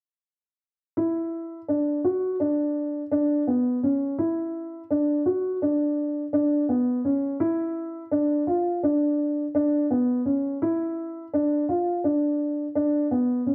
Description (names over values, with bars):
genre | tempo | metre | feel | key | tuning
contemporary instrumental, contemporary | 168 BPM (eighths) | 9/8 | straight | unclear | A4 = 441 Hz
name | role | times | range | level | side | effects
dark baby grand piano | solo | 1.0-13.5 s | B3 to F#4 | -25 LUFS | equal | none
room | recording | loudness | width
light reverb, small room reverb | cassette tape | -25 LUFS | mono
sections
1.0-13.5 A section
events
none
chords
none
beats
| 0.97 1.33 1.69 2.05 2.40 2.76 3.12 3.48 3.83 | 4.19 4.55 4.90 5.26 5.62 5.97 6.33 6.69 7.05 | 7.40 7.76 8.12 8.47 8.83 9.19 9.54 9.90 10.26 | 10.61 10.97 11.33 11.68 12.04 12.39 12.75 13.11 13.46